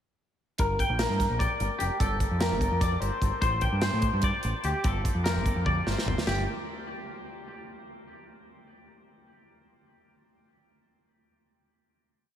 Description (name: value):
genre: math rock and midwest emo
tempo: 295 BPM (eighths)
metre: 7/8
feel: straight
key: G minor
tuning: A4 = 440 Hz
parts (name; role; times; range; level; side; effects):
- twangy electric guitar; arpeggios; 0.6-6.5 s; G4 to G5; -30 LUFS; left 2 dB; lush chorus, diffuse ambient delay
- growling picked electric bass; bass; 0.6-6.5 s; F1 to A2; -29 LUFS; equal; overdrive
- modern studio drum kit; drums; 0.6-6.4 s; china cymbal, hi-hat, kick drum, snare drum, toms; -30 LUFS; equal; none
room: moderate cathedral reverb, RT60 6.3 s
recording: dreamy mix soaked in reverb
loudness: -25 LUFS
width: side -10 dB against mid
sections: 0.6-6.3 A section; 6.3-7.7 final note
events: drum fill 5.7-6.3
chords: 0.6 Gm7; 3.4 D7sus4/A; 4.8 Gm7; 6.3 N.C.